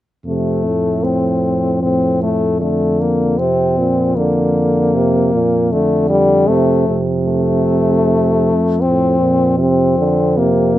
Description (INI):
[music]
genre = classical, brass quintet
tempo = 77 BPM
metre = 4/4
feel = straight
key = F major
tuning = A4 = 440 Hz
[part]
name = dark tuba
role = bass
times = 0.2-10.8 s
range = F2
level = -18 LUFS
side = equal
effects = none
[part]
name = warm French horn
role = accompaniment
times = 0.3-10.8 s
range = G3 to C4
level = -16 LUFS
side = left 3 dB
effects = none
[part]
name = warm trombone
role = accompaniment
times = 0.3-10.8 s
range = A2 to D3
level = -18 LUFS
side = right 4 dB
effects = none
[sound]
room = little or no reverb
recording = none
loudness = -13 LUFS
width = side -14 dB against mid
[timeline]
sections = 0.3-10.8 A section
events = none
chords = 0.3 F; 3.4 C5/F; 6.5 F; 9.6 C5/F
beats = | 0.25 1.04 1.83 2.61 | 3.38 4.16 4.93 5.72 | 6.49 7.26 8.04 8.82 | 9.60 10.38